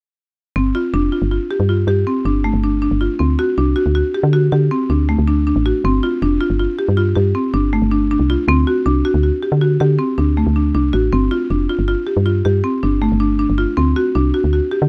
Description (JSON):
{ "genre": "contemporary instrumental, contemporary", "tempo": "159 BPM", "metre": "7/4", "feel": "straight", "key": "unclear", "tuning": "A4 = 440 Hz", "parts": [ { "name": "buzzing marimba with hard mallets", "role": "arpeggios", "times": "0.6-14.9 s", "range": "A3 to G4", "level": "-19 LUFS", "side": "equal", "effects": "none" }, { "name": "woody FM bass", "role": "bass", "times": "0.6-14.9 s", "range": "F1 to D3", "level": "-19 LUFS", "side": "equal", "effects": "none" } ], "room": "little or no reverb", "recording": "close, detailed microphones", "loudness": "-17 LUFS", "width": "mono", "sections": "0.6-14.9 A section", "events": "none", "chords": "0.6 G7(no3); 3.2 D7; 5.8 G7sus4; 8.5 D7; 11.1 G7(no3); 13.8 D7" }